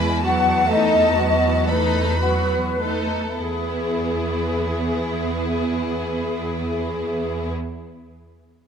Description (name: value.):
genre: classical.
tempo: 33-46 BPM (dotted quarters).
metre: 6/8.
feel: rubato.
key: E major.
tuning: A4 = 445 Hz.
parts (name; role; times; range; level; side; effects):
clear studio violin section; melody; 0.0-7.5 s; G#4 to B5; -32 LUFS; left 3 dB; none.
bright large flute ensemble; second line; 0.0-7.5 s; G#4 to G#5; -23 LUFS; left 2 dB; none.
rich studio violin section; second line; 0.0-7.5 s; D#4 to B4; -28 LUFS; left 2 dB; none.
clear studio viola section; accompaniment; 0.0-7.5 s; F#3 to B3; -26 LUFS; right 2 dB; none.
rich studio cello section; bass; 0.0-7.5 s; E2; -25 LUFS; right 2 dB; none.
room: moderate concert hall reverb, RT60 2.3 s.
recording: close, detailed microphones.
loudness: -19 LUFS.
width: side -7 dB against mid.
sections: 0.0-3.4 A section; 3.4-6.8 B section.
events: slowing down 0.0-3.4.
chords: 0.2 B7/E; 3.4 E.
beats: | 0.24 1.68 | 3.38 5.07.